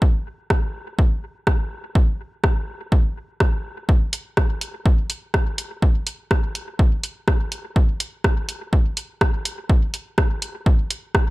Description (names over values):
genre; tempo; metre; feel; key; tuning
techno; 124 BPM; 4/4; swing 56% on 16ths; none; none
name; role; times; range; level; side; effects
electronic kick drum; drums; 0.0-11.3 s; none; -18 LUFS; equal; small room ambience
punchy analog drum machine; drums; 0.5-11.3 s; hi-hat, rim click; -24 LUFS; right 1 dB; small room ambience
room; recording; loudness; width
little or no reverb; none; -19 LUFS; side -20 dB against mid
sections
0.0-11.3 A section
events
none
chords
none